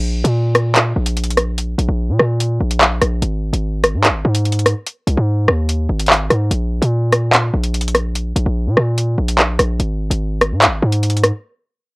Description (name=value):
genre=hip hop, drill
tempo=146 BPM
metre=4/4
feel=half-time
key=unclear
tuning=A4 = 440 Hz
part: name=hard-hitting 808-style bass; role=bass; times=0.0-11.3 s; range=Ab1 to Bb2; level=-16 LUFS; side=equal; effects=none
part: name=drill drum kit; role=drums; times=0.2-11.3 s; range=handclaps, hi-hat, rim click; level=-14 LUFS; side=equal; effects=cassette tape
room=little or no reverb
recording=home recording on cassette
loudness=-14 LUFS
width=side -27 dB against mid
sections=0.0-12.0 A section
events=break 11.4-12.0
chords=none